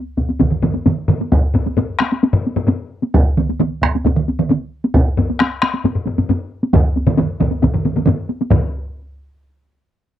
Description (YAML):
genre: japanese traditional, taiko drum ensemble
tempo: 134 BPM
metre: 4/4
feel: straight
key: none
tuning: none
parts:
  - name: solo taiko drums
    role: percussion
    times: 0.2-8.7 s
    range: none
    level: -18 LUFS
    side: right 1 dB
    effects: none
  - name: taiko ensemble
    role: percussion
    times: 0.2-8.7 s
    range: none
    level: -18 LUFS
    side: left 1 dB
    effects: none
  - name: taiko ensemble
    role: percussion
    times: 0.4-8.9 s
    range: none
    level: -19 LUFS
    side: left 2 dB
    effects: none
  - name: taiko ensemble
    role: percussion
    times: 0.4-8.9 s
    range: none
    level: -19 LUFS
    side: right 4 dB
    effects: none
room: moderate booth ambience, RT60 0.2 s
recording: dry, close 1970s-style studio recording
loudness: -15 LUFS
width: side -11 dB against mid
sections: 0.0-8.5 A section; 8.5-10.2 B section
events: speeding up 0.0-10.2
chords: none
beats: 0.40 0.86 | 1.32 1.78 2.23 2.69 | 3.14 3.59 4.04 4.49 | 4.94 5.39 5.84 6.29 | 6.73 7.17 7.62 8.06 | 8.50